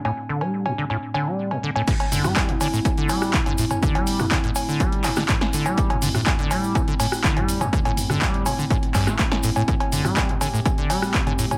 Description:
acid house; 123 BPM; 4/4; straight; A minor; A4 = 440 Hz
warbly tape-like pad; sustained chords; 0.0-11.6 s; A2 to G4; -32 LUFS; equal; chorus, built-in reverb, sidechain pumping
acid bass, saw; riff; 0.1-11.5 s; G2 to A3; -28 LUFS; equal; analog chorus, tape echo
punchy analog drum machine; drums; 0.1-11.6 s; cowbell, crash cymbal, handclaps, hi-hat, rim click, snare drum, toms; -27 LUFS; equal; overdrive
electronic kick drum; drums; 1.9-11.2 s; -26 LUFS; equal; overdrive
tube shaker; percussion; 1.9-11.6 s; -37 LUFS; equal
light reverb; -22 LUFS; mono
0.0-1.9 A section; 1.9-11.6 B section
filter sweep on acid bass 0.0-1.9; drop 1.9-11.6
0.0 Am

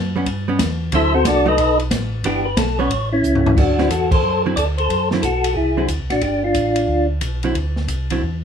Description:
soul jazz organ trio; 181 BPM; 4/4; swing 64% on 8ths; D mixolydian; A4 = 440 Hz
mellow tonewheel organ; bass; 0.0-8.4 s; G1 to G2; -22 LUFS; equal; slow rotary speaker
hollow-body jazz guitar; accompaniment; 0.2-8.2 s; D3 to G4; -22 LUFS; right 3 dB
open jazz drum kit; drums; 0.3-8.3 s; crash cymbal, hi-hat, kick drum, ride cymbal, snare drum, toms; -23 LUFS; left 1 dB
percussive tonewheel organ; melody; 0.9-7.1 s; C4 to E5; -18 LUFS; left 1 dB; slow rotary speaker
light reverb; -16 LUFS; side -7 dB against mid
0.0-3.6 A section; 3.6-8.4 B section
tonewheel organ solo 0.0-3.6; drum fill 3.2-3.6; band accent 4.1
0.0 A9 (rootless); 0.9 D9; 1.6 B7; 2.2 Em7; 2.9 A; 3.6 D9; 6.2 G9; 7.6 D7sus2

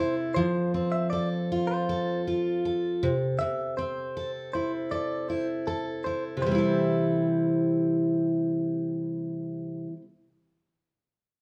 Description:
pop; 79 BPM; 4/4; straight; C major; A4 = 441 Hz
picked steel-string acoustic guitar; accompaniment; 0.0-10.1 s; C3 to A4; -29 LUFS; equal
direct-recorded clean electric guitar; arpeggios; 0.0-8.7 s; A4 to E5; -35 LUFS; equal
moderate large studio reverb, RT60 1.1 s; band playing live in one room; -28 LUFS; mono
0.0-6.4 A section; 6.4-9.5 B section
0.4 F; 3.0 C6

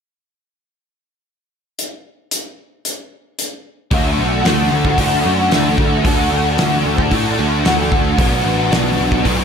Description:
rock, shoegaze and dream pop; 112 BPM; 4/4; straight; A4 = 440 Hz
loose indie drum kit; drums; 1.8-9.4 s; hi-hat, kick drum, snare drum; -19 LUFS; equal
biting overdriven guitar; riff; 3.9-9.4 s; B2 to F#4; -16 LUFS; equal; ensemble chorus
picked electric bass; bass; 3.9-9.4 s; A1 to A2; -19 LUFS; equal
light reverb, small room ambience; -14 LUFS; side -6 dB against mid
1.8-3.9 A section; 3.9-9.4 B section
1.8 N.C.; 3.9 D; 8.2 Bm

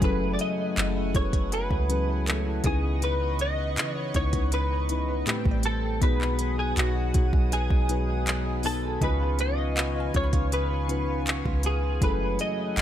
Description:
contemporary R&B; 80 BPM; 4/4; straight; F# dorian; A4 = 440 Hz
direct-recorded clean electric guitar; melody; 0.0-12.8 s; F#4 to D#5; -31 LUFS; equal; ensemble chorus, ping-pong delay
muted felt-like synth keys; accompaniment; 0.0-12.8 s; A2 to B4; -31 LUFS; left 4 dB; chorus
chorused pulse-width pad; sustained chords; 0.0-12.8 s; A3 to D#6; -38 LUFS; left 1 dB; sidechain pumping
direct-recorded clean electric guitar; arpeggios; 0.0-12.8 s; A2 to G#4; -37 LUFS; right 6 dB; lush chorus, ping-pong delay
soft 808-style bass; bass; 0.0-12.8 s; F#1 to E3; -28 LUFS; equal
smooth R&B drum kit; drums; 0.0-12.8 s; handclaps, hi-hat, kick drum; -27 LUFS; equal
mallet-like synth pluck; texture; 2.6-12.8 s; G4 to B5; -44 LUFS; equal
little or no reverb; -23 LUFS; side -11 dB against mid
0.0-12.8 A section
0.0 F#m9; 2.6 C#m9; 5.3 Am7; 6.0 G#m7/B; 9.0 C#7; 12.0 F#m9

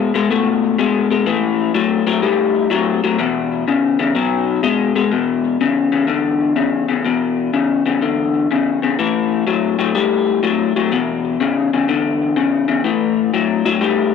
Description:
blues; 124 BPM; 4/4; swing 67% on 8ths; A4 = 442 Hz
electric guitar through a small old amp; solo; 0.0-14.1 s; E2 to A3; -15 LUFS; left 6 dB; analog chorus
moderate echo chamber reverb, RT60 2.0 s; -15 LUFS; side -6 dB against mid
0.0-5.1 A section; 5.1-14.1 B section
0.0 B5; 1.3 A5; 3.2 E5; 4.2 B5; 5.1 E5; 9.0 A5; 10.9 E5; 12.8 A5

